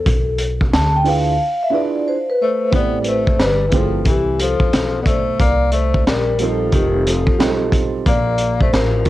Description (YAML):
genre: hip hop, jazz-hop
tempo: 90 BPM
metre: 4/4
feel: swing 63% on 16ths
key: unclear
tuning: A4 = 440 Hz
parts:
  - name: vibraphone with soft mallets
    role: melody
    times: 0.0-9.1 s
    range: G4 to A5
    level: -20 LUFS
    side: left 1 dB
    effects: cassette tape, tape echo
  - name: upright bass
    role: bass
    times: 0.0-9.1 s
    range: F1 to D2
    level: -21 LUFS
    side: equal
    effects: none
  - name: crunchy breakbeat drum kit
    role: drums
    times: 0.1-9.1 s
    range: hi-hat, kick drum, snare drum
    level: -18 LUFS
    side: equal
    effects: cassette tape
  - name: dark upright piano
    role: accompaniment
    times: 1.0-9.1 s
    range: F3 to C5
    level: -21 LUFS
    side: right 7 dB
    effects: cassette tape
  - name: breathy tenor saxophone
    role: second line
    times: 2.4-9.1 s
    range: Eb3 to B3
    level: -23 LUFS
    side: left 6 dB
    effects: cassette tape
room: light reverb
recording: home recording on cassette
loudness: -14 LUFS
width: side -15 dB against mid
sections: 0.0-2.7 A section; 2.7-9.1 B section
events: vibraphone solo 0.0-2.7; drums muted 1.4-2.7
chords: 0.1 Bdim; 1.4 E7b9; 2.7 Am9; 5.4 Cm7; 6.7 F7; 8.1 Bbmaj7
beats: | 0.06 0.73 1.40 2.06 | 2.73 3.40 4.06 4.73 | 5.40 6.06 6.73 7.40 | 8.06 8.73